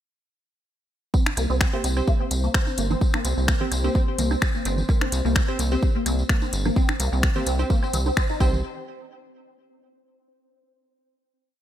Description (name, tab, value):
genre	minimal techno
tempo	128 BPM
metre	4/4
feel	swing 54% on 16ths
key	unclear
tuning	A4 = 438 Hz
part	resonant blip pluck	riff	1.1-8.6 s	Bb3 to Eb4	-29 LUFS	left 1 dB	phaser, ensemble chorus, sidechain pumping, ping-pong delay
part	electronic kick drum	drums	1.1-8.5 s	none	-22 LUFS	equal	studio ambience
part	tambourine	percussion	1.1-8.6 s	none	-36 LUFS	left 3 dB	none
part	pulsing gated texture	texture	1.9-8.6 s	C4 to C5	-37 LUFS	left 1 dB	chorus, built-in reverb, sidechain pumping
part	techno drum kit	drums	1.3-8.3 s	finger snaps, hi-hat	-28 LUFS	left 2 dB	studio ambience
part	bongos, woodblock and congas	percussion	1.3-8.6 s	none	-33 LUFS	right 5 dB	studio ambience, ping-pong delay
part	rubbery square bass	bass	1.4-8.6 s	G1 to C2	-24 LUFS	equal	sidechain pumping
part	wavetable chord stab	stabs	1.7-8.6 s	C4 to C5	-31 LUFS	right 2 dB	ping-pong delay
room	light reverb, digital ambience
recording	bright 1980s-style digital production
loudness	-20 LUFS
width	side -11 dB against mid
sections	1.1-8.6 drop; 8.6-10.5 final hit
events	drop 1.1-8.6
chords	1.1 C5; 8.6 N.C.